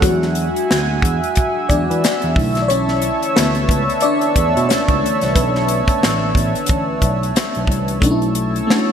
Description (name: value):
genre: R&B, neo-soul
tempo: 90 BPM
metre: 4/4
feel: swing 55% on 16ths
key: B dorian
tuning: A4 = 438 Hz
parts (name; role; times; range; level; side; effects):
- FM electric piano with soft pad layer; accompaniment; 0.0-8.9 s; D3 to D5; -19 LUFS; left 2 dB; chorus
- chorused pulse-width pad; sustained chords; 0.0-8.9 s; C#5 to E6; -21 LUFS; right 2 dB; none
- overdriven tine electric piano; bass; 0.0-8.6 s; A1 to E3; -21 LUFS; right 1 dB; phaser
- tight funk drum kit; drums; 0.0-8.9 s; hi-hat, kick drum, snare drum; -19 LUFS; equal; gated reverb
room: light reverb, small room ambience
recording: bright 1980s-style digital production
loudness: -14 LUFS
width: side -8 dB against mid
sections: 0.0-8.0 A section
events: FM electric piano solo 0.0-8.0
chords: 0.0 E9; 2.4 Bm11